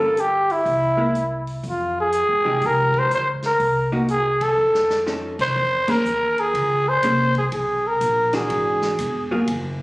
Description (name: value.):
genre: jazz, small-group swing and bop.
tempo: 122 BPM.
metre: 4/4.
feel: swing 66% on 8ths.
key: F minor, Bb minor from 5.6 s.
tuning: A4 = 441 Hz.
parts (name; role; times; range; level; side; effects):
growling trumpet; melody; 0.0-9.3 s; E4 to C5; -19 LUFS; equal; plate reverb.
vintage hollow-body jazz guitar; accompaniment; 0.0-9.5 s; E3 to C5; -24 LUFS; equal; none.
upright bass; bass; 0.0-9.8 s; E1 to C3; -28 LUFS; equal; none.
vintage drum kit; drums; 0.2-9.6 s; crash cymbal, hi-hat, kick drum, ride cymbal, snare drum; -35 LUFS; equal; none.
room: moderate studio reverb, RT60 0.5 s.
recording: recorded on a phone in the room, club reverb.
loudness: -18 LUFS.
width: side -21 dB against mid.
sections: 0.0-5.6 A section; 5.6-9.8 B section.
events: band accent 4.3, 5.8; drum fill 4.6-5.1.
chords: 0.0 Gm7b5; 0.7 Caug7; 1.6 Fm9; 3.6 Cm7b5; 4.6 F7b13; 5.6 Bbm9; 7.5 E9.